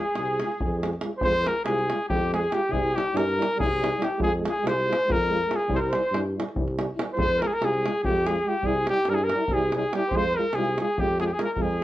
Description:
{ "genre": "balkan folk, Balkan brass band", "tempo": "283 BPM (eighths)", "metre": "7/8", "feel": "straight", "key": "F harmonic minor", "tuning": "A4 = 435 Hz", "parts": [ { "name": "warm trumpet", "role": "melody", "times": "0.0-11.8 s", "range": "G4 to C5", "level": "-26 LUFS", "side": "left 1 dB", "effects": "none" }, { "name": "warm flugelhorn", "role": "second line", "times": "0.0-11.8 s", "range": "G4 to C5", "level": "-31 LUFS", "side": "right 3 dB", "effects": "none" }, { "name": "mellow French horn", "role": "accompaniment", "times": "0.0-11.7 s", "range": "E4 to F4", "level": "-34 LUFS", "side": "left 4 dB", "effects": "none" }, { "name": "mellow euphonium", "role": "accompaniment", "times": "0.0-11.8 s", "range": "G3 to Ab3", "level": "-33 LUFS", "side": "right 5 dB", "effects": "none" }, { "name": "warm tuba", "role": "bass", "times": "0.2-11.8 s", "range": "C2 to G2", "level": "-29 LUFS", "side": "equal", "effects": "transformer saturation" }, { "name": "davul", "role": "percussion", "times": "0.2-11.8 s", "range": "none", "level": "-31 LUFS", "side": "equal", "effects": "none" } ], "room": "moderate studio reverb, RT60 0.5 s", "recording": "worn, warbling old tape, cassette tape, warbly pitch drift", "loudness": "-22 LUFS", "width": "side -14 dB against mid", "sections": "0.0-1.2 A section; 1.2-11.8 A section", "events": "none", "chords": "0.0 Fm; 2.7 C; 4.2 Fm; 5.7 C; 7.2 Fm; 8.6 C; 10.1 Fm" }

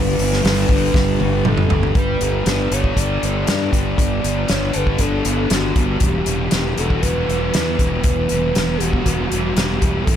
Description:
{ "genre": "rock, shoegaze and dream pop", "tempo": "118 BPM", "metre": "4/4", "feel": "straight", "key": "G major", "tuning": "A4 = 439 Hz", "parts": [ { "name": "pure breathy sine lead", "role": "melody", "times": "0.0-10.2 s", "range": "F#4 to D5", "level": "-24 LUFS", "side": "equal", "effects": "chorus, analog delay" }, { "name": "thick fuzz guitar", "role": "riff", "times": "0.0-10.2 s", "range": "E2 to A4", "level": "-21 LUFS", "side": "equal", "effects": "distortion, lush chorus" }, { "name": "fuzz fingered electric bass", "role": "bass", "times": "0.0-10.2 s", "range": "E1 to G2", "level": "-22 LUFS", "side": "equal", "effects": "overdrive" }, { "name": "loose indie drum kit", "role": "drums", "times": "0.2-10.2 s", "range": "hi-hat, kick drum, snare drum, toms", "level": "-20 LUFS", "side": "equal", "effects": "none" } ], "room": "small room ambience", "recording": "none", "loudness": "-16 LUFS", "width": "side -10 dB against mid", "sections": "0.0-2.0 A section; 2.0-10.2 B section", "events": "drum fill 0.9-2.0", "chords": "0.0 G; 2.0 Gadd9; 6.0 Emadd9" }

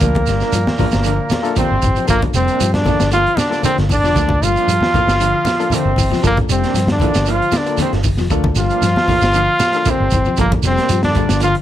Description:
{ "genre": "afrobeat", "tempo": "116 BPM", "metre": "4/4", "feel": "swing 54% on 16ths", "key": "G dorian", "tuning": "A4 = 440 Hz", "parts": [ { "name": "bright trombone", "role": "melody", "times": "0.0-11.5 s", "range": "Bb3 to F4", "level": "-18 LUFS", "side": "equal", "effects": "none" }, { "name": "warm trombone section", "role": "second line", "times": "0.0-11.6 s", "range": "Bb2 to F3", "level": "-28 LUFS", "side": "left 6 dB", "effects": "none" }, { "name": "warm trumpet", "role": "second line", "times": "0.0-11.5 s", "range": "Bb4 to F5", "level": "-26 LUFS", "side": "right 4 dB", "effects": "none" }, { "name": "barky reed electric piano", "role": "accompaniment", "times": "0.0-11.5 s", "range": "Bb3 to G5", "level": "-26 LUFS", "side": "left 8 dB", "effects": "overdrive, fast tremolo" }, { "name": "electric guitar at the edge of break-up", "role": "arpeggios", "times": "0.0-11.6 s", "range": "D3 to G3", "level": "-25 LUFS", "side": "left 6 dB", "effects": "lush chorus, tape echo" }, { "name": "electric guitar through a small old amp", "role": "stabs", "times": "0.0-11.6 s", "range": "F3 to D4", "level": "-26 LUFS", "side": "right 11 dB", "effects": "tremolo, tape echo" }, { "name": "vintage muted fingered electric bass", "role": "bass", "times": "0.0-11.5 s", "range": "F1 to G2", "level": "-19 LUFS", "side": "equal", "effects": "none" }, { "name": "crunchy breakbeat drum kit", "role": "drums", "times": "0.0-11.6 s", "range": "hi-hat, kick drum, snare drum", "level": "-21 LUFS", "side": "equal", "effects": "none" }, { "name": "congas", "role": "percussion", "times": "0.0-11.6 s", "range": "none", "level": "-23 LUFS", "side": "left 2 dB", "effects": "none" }, { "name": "shekere", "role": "percussion", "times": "0.0-11.6 s", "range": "none", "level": "-24 LUFS", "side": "right 6 dB", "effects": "none" } ], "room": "little or no reverb", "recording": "none", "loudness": "-13 LUFS", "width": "side -12 dB against mid", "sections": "0.0-2.1 A section; 2.1-11.6 A section", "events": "reed electric piano fill 1.1-2.1", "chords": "0.0 Gm7" }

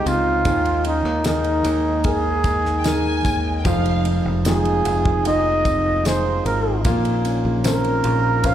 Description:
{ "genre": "pop ballad", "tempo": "75 BPM", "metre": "4/4", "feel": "straight", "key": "F minor", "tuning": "A4 = 440 Hz", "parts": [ { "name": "breathy flugelhorn", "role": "melody", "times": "0.0-8.5 s", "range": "Eb4 to F5", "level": "-22 LUFS", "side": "right 2 dB", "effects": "slapback echo, digital delay" }, { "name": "warm baby grand piano", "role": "accompaniment", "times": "0.0-8.5 s", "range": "Eb3 to Eb5", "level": "-24 LUFS", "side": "right 1 dB", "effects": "slapback echo" }, { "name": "mellow French horn section", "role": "sustained chords", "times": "0.0-8.5 s", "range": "Db3 to C5", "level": "-29 LUFS", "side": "left 3 dB", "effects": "none" }, { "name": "nylon-string guitar", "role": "arpeggios", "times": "0.0-8.5 s", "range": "F2 to Ab4", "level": "-28 LUFS", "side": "left 3 dB", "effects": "none" }, { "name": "fingered electric bass", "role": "bass", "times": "0.1-8.5 s", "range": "F1 to Eb2", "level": "-23 LUFS", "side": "equal", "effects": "none" }, { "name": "damped 70s drum kit", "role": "drums", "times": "0.1-8.5 s", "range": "kick drum, ride cymbal, snare drum", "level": "-26 LUFS", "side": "equal", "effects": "none" }, { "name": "tambourine", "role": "percussion", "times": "0.1-8.5 s", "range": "none", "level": "-37 LUFS", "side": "left 4 dB", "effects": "none" }, { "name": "warm studio violin section", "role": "second line", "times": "2.8-4.3 s", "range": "F5 to Ab5", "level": "-28 LUFS", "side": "left 1 dB", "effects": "slapback echo" } ], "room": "light reverb, small room ambience", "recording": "live gig heard through the venue's PA, club reverb", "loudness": "-17 LUFS", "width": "side -10 dB against mid", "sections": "0.0-8.5 A section", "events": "none", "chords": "0.5 Ebsus4; 3.7 Fm7; 6.9 Bbmadd9" }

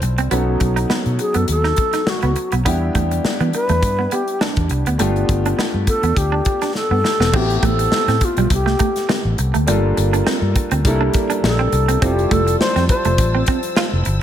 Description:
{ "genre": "polished 1980s jazz-funk pop", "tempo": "103 BPM", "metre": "4/4", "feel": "swing 54% on 16ths", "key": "unclear", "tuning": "A4 = 439 Hz", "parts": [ { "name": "clear concert grand piano", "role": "accompaniment", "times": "0.0-14.2 s", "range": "F#3 to A4", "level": "-23 LUFS", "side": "left 1 dB", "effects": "wide subtle chorus" }, { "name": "semi-hollow electric guitar", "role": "riff", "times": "0.0-14.1 s", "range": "G3 to F4", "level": "-24 LUFS", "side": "right 7 dB", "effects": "lush chorus" }, { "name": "vintage muted fingered electric bass", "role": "bass", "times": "0.0-14.2 s", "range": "E1 to E3", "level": "-19 LUFS", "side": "equal", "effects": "none" }, { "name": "modern studio drum kit", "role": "drums", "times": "0.0-14.2 s", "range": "crash cymbal, hi-hat, kick drum, snare drum", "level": "-21 LUFS", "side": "left 1 dB", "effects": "gated reverb" }, { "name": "bright reedy wooden-headed alto flute", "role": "melody", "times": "1.2-13.4 s", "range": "D4 to C5", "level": "-21 LUFS", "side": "left 1 dB", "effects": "digital delay" }, { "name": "warm studio string section", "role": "sustained chords", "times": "12.0-14.2 s", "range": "F3 to E6", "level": "-29 LUFS", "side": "left 3 dB", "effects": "none" } ], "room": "light reverb, small room ambience", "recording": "none", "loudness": "-15 LUFS", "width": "side -10 dB against mid", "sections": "0.0-7.3 A section; 7.3-14.2 B section", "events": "drum fill 6.8-7.3", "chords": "0.3 B7; 2.7 Em7; 5.0 G9; 7.3 Am9; 9.7 Gm9; 10.8 C13; 12.0 Fmaj7" }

